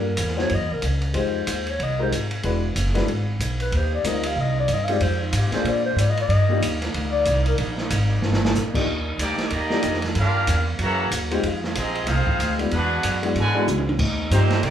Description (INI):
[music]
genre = jazz, big band swing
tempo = 187 BPM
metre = 4/4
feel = swing 61% on 8ths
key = Eb major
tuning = A4 = 440 Hz
[part]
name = breathy clarinet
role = melody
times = 0.0-7.5 s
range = Eb4 to F5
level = -25 LUFS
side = left 3 dB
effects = none
[part]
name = warm baby grand piano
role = accompaniment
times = 0.0-6.6, 8.7-14.5 s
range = F3 to C5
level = -26 LUFS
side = left 3 dB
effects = none
[part]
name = upright bass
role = bass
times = 0.0-14.7 s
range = E1 to Bb2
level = -23 LUFS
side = equal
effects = none
[part]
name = open jazz drum kit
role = drums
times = 0.2-14.7 s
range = crash cymbal, hi-hat, kick drum, ride cymbal, snare drum, toms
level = -27 LUFS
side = right 1 dB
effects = none
[part]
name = warm saxophone section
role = sustained chords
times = 3.7-14.7 s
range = C3 to D5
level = -34 LUFS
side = right 2 dB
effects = none
[part]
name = warm trumpet section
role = melody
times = 9.2-14.7 s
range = Bb3 to Bb5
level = -26 LUFS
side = equal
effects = none
[part]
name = muted trombone section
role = second line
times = 9.2-14.7 s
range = B2 to F#4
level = -30 LUFS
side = right 3 dB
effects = none
[sound]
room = moderate large studio reverb, RT60 0.9 s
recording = band playing live in one room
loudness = -20 LUFS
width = side -10 dB against mid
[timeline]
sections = 0.0-8.9 A section; 8.9-14.7 B section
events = clarinet solo 0.0-8.9; drum fill 8.2-8.5, 13.7-14.0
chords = 0.0 Gm; 0.5 Gb5; 1.1 Fm9; 2.4 E9; 3.7 Eb6; 4.4 Cm9; 5.0 Fm7; 5.7 Bb7; 6.3 Ebmaj7; 10.2 Gm7; 10.8 Gb7#11; 11.4 Fm9; 12.7 E9; 14.0 Eb6